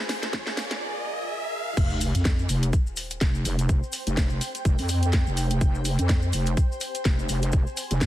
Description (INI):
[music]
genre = bass house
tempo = 125 BPM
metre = 4/4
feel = swing 57% on 16ths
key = F minor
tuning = A4 = 440 Hz
[part]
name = riser and sub drop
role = sound effects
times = 0.0-3.7 s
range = none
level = -32 LUFS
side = equal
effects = none
[part]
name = granular cloud pad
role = texture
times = 0.0-8.1 s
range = F4 to Ab5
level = -36 LUFS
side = right 1 dB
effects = built-in reverb, sidechain pumping
[part]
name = garage drum kit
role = drums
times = 0.1-8.1 s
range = crash cymbal, hi-hat, snare drum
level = -30 LUFS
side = equal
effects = none
[part]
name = electronic kick drum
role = drums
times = 0.3-8.1 s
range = none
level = -23 LUFS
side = equal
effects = none
[part]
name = wobble bass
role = bass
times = 1.8-8.1 s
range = F1 to F2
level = -24 LUFS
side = equal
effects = chorus, overdrive, sidechain pumping
[part]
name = maracas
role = percussion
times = 1.8-8.1 s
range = none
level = -38 LUFS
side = left 4 dB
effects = none
[sound]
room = little or no reverb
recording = dense, heavily limited modern master, high-pass filter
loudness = -23 LUFS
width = side -14 dB against mid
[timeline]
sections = 0.0-1.8 A section; 1.8-8.1 B section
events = build-up 0.0-1.8; drum fill 0.0-0.8; riser 0.0-1.8; drop 1.8-8.1; impact 1.8-3.7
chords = 0.0 Fm; 1.8 Fmadd9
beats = 0.33 0.81 1.29 | 1.77 2.25 2.73 3.21 | 3.69 4.17 4.65 5.13 | 5.61 6.09 6.57 7.05 | 7.53 8.01